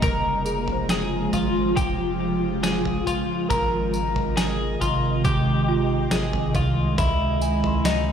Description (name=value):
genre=dream pop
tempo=69 BPM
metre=4/4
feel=straight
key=unclear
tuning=A4 = 440 Hz
part: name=ethereal airy pad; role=sustained chords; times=0.0-8.1 s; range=C3 to Eb5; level=-24 LUFS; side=right 1 dB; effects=ensemble chorus, built-in reverb
part: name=twelve-string electric guitar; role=arpeggios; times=0.0-8.1 s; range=Eb4 to Bb4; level=-26 LUFS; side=left 3 dB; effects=wide subtle chorus, ping-pong delay
part: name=saturated sub bass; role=bass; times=0.0-8.1 s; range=F1 to Db2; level=-28 LUFS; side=equal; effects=none
part: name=detuned 8-bit digital drum machine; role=drums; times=0.0-8.1 s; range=kick drum, snare drum, tambourine, toms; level=-26 LUFS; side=right 1 dB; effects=none
part: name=worn celesta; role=texture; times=0.0-8.1 s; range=F4 to C6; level=-34 LUFS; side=right 5 dB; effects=stereo widening, ping-pong delay
room=light reverb, digital ambience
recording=played on a big sound system in a bare room, stone room reverb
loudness=-20 LUFS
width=side -8 dB against mid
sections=0.0-8.1 A section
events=none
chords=0.0 Db/F; 3.5 Abmaj7; 7.0 Dbmadd9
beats=| 0.03 0.90 1.77 2.64 | 3.51 4.38 5.25 6.12 | 6.99 7.86